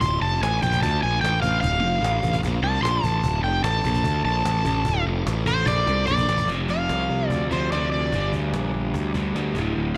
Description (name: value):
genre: blues rock power trio and southern rock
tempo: 148 BPM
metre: 4/4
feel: straight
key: D minor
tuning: A4 = 441 Hz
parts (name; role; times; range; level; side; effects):
- overdriven slide guitar; melody; 0.0-8.3 s; C5 to C6; -27 LUFS; equal; slapback echo
- tonewheel organ; sustained chords; 0.0-6.5 s; A3 to Bb4; -37 LUFS; equal; chorus vibrato, fast rotary speaker
- fuzz picked electric bass; bass; 0.0-10.0 s; D1 to D2; -26 LUFS; equal; overdrive
- cajon; drums; 0.0-9.6 s; none; -34 LUFS; equal; none
- crunchy overdriven guitar; riff; 6.5-10.0 s; D2 to G3; -29 LUFS; equal; slapback echo
room: moderate lush hall reverb, RT60 2.0 s, digital ambience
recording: big arena sound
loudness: -23 LUFS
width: mono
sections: 0.0-6.5 A section; 6.5-10.0 B section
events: electric slide guitar solo 0.0-6.5; drum fill 5.7-6.5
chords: 0.0 Dm; 6.5 F5; 8.1 Gm